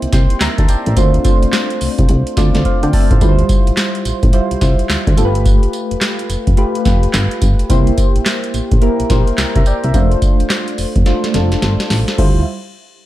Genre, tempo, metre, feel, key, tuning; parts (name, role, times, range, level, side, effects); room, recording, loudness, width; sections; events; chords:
R&B, new jack swing; 107 BPM; 4/4; swing 63% on 16ths; D minor; A4 = 442 Hz
soft electric-piano-like synth keys; accompaniment; 0.0-12.4 s; G3 to C6; -18 LUFS; equal; chorus, phaser
solid FM bass; bass; 0.0-12.4 s; F1 to D3; -16 LUFS; equal
booming analog drum machine; drums; 0.0-12.4 s; crash cymbal, handclaps, hi-hat, kick drum, snare drum, tambourine; -14 LUFS; equal
little or no reverb; -12 LUFS; side -14 dB against mid
0.0-3.2 A section; 3.2-12.2 B section
drum fill 2.6-3.2, 11.1-12.2
0.0 C7; 1.0 Dm7; 3.2 Dm11; 5.2 G9; 7.7 C7; 9.9 F6; 12.2 Dm11